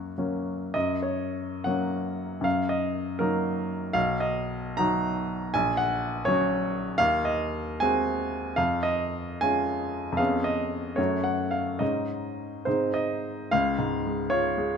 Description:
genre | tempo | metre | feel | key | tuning
classical, romantic character piece for solo piano | 63-84 BPM (dotted quarters) | 6/8 | rubato | F# major, Db major from 7.0 s | A4 = 440 Hz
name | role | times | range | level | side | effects
clear baby grand piano | solo | 0.0-14.8 s | A#1 to A#5 | -25 LUFS | equal | none
room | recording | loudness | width
moderate recital hall reverb, RT60 1.3 s | close, detailed microphones | -25 LUFS | side -6 dB against mid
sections
0.7-13.5 A section; 13.5-14.8 B section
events
none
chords
0.0 F#; 2.4 D#m/F#; 4.0 Bmaj7; 5.5 F#/A#; 7.0 Ab7/Eb; 8.6 Db/F; 10.2 Db7/F; 11.0 Gbm; 11.8 Absus4; 12.7 Ab; 13.5 Db

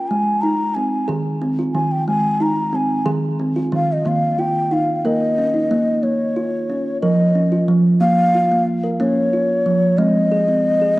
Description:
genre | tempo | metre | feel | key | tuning
world meditative, meditative tuned percussion | 61 BPM (dotted quarters) | 6/8 | straight | Bb dorian | A4 = 440 Hz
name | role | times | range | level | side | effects
breathy mellow bansuri | melody | 0.0-11.0 s | Db5 to Bb5 | -20 LUFS | left 1 dB | tape echo
kalimba | arpeggios | 0.1-11.0 s | Eb3 to Bb4 | -18 LUFS | right 1 dB | none
room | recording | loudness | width
wet echo chamber reverb, RT60 2.5 s | worn, warbling old tape, cassette tape, warbly pitch drift | -16 LUFS | side -18 dB against mid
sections
0.0-8.0 A section; 8.0-11.0 B section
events
none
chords
0.1 Ab; 4.1 Eb5; 6.0 Bbm; 10.0 Ab

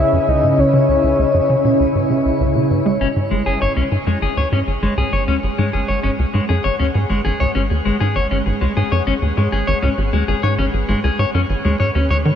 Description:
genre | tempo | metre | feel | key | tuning
ambient, sequencer-driven space music | 99 BPM | 4/4 | straight | unclear | A4 = 436 Hz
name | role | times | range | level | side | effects
soft octave-layered synth lead | melody | 0.0-2.4 s | C#5 to E5 | -20 LUFS | left 2 dB | chorus, tremolo, shimmer reverb, tape echo
evolving wavetable pad | sustained chords | 0.0-12.4 s | C#3 to F#5 | -22 LUFS | right 1 dB | ensemble chorus, built-in reverb, shimmer reverb
tight sequencer bass | riff | 0.0-12.3 s | G#1 to G#3 | -18 LUFS | equal | analog chorus, tape echo
clean electric guitar | arpeggios | 3.0-12.2 s | G#3 to C#5 | -20 LUFS | left 3 dB | auto-pan, low-pass filter, shimmer reverb, tape echo
room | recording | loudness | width
wet huge ambient reverb, RT60 8.5 s | none | -15 LUFS | side -9 dB against mid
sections
0.0-3.0 A section; 3.0-12.4 B section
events
filter sweep on analog synth bass 0.0-3.0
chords
0.0 C#m7; 3.0 G#m7

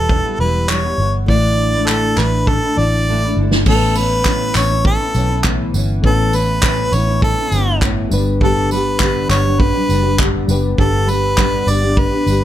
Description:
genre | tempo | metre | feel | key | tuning
acoustic pop | 101 BPM | 4/4 | straight | unclear | A4 = 440 Hz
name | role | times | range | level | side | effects
clear harmonica | melody | 0.0-12.4 s | A4 to D5 | -19 LUFS | equal | plate reverb
nylon-string guitar | accompaniment | 0.0-12.4 s | E2 to G4 | -21 LUFS | left 1 dB | double-tracked left and right, plate reverb
overdriven reed electric piano | accompaniment | 0.0-12.4 s | G3 to D5 | -26 LUFS | left 5 dB | plate reverb
vintage muted fingered electric bass | bass | 0.0-12.4 s | E1 to B1 | -18 LUFS | equal | none
unplugged drum kit | drums | 0.1-12.4 s | crash cymbal, handclaps, kick drum, snare drum, tambourine | -18 LUFS | equal | none
room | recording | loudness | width
light reverb | none | -13 LUFS | side -12 dB against mid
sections
0.0-3.7 A section; 3.7-12.4 B section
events
drum fill 2.5-3.7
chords
0.0 Em; 1.3 Asus4; 3.7 Aadd9; 8.1 G

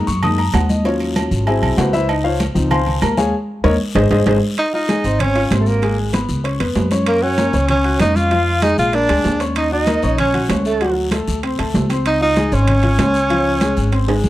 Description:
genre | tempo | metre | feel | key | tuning
Afro-Cuban jazz | 193 BPM | 4/4 | straight | Db major | A4 = 439 Hz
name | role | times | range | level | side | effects
warm concert grand piano | accompaniment | 0.0-14.3 s | F3 to Gb6 | -20 LUFS | left 2 dB | none
upright bass | bass | 0.1-14.3 s | Ab1 to Gb2 | -19 LUFS | equal | none
congas | percussion | 0.1-14.3 s | none | -22 LUFS | equal | none
guiro | percussion | 0.1-14.3 s | none | -34 LUFS | left 6 dB | none
agogo bells and timbales | percussion | 0.2-14.2 s | none | -25 LUFS | right 6 dB | none
warm tenor saxophone | melody | 4.6-14.2 s | A3 to F4 | -18 LUFS | equal | none
breathy bright concert flute | second line | 4.6-14.2 s | A4 to F5 | -24 LUFS | right 5 dB | none
room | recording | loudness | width
small room ambience | dry, close 1970s-style studio recording | -14 LUFS | side -15 dB against mid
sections
0.0-4.6 A section; 4.6-14.3 B section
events
grand piano solo 0.0-4.6; band accent 3.3-4.6; drum fill 3.8-4.6, 14.1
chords
0.0 Gb69; 0.8 Ebm7; 1.5 Ab7alt; 2.1 Dbmaj7; 3.3 Eb5; 4.0 Ab; 4.6 Dbmaj9; 5.8 Abm; 6.4 Db7; 7.1 Gbmaj7; 8.3 Bb7sus4; 8.9 Bb7; 9.6 Ebm7; 10.8 D7; 12.1 Dbmaj9

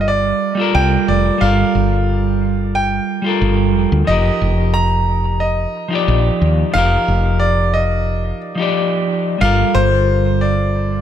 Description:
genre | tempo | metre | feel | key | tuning
sunset chillout | 90 BPM | 4/4 | straight | G minor | A4 = 440 Hz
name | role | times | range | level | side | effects
bright grand piano | melody | 0.0-11.0 s | C5 to Bb5 | -19 LUFS | equal | dub echo
clean electric guitar | accompaniment | 0.0-11.0 s | F3 to D5 | -18 LUFS | moving between left 2 dB and right 6 dB | auto-pan, dub echo
woody fretless electric bass | bass | 0.0-11.0 s | F1 to Eb2 | -16 LUFS | equal | none
room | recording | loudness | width
moderate echo chamber reverb, RT60 1.7 s | echo-heavy mix | -13 LUFS | side -10 dB against mid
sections
0.0-11.0 A section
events
none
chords
0.0 Gm9; 4.1 F9sus4; 9.4 Gm9

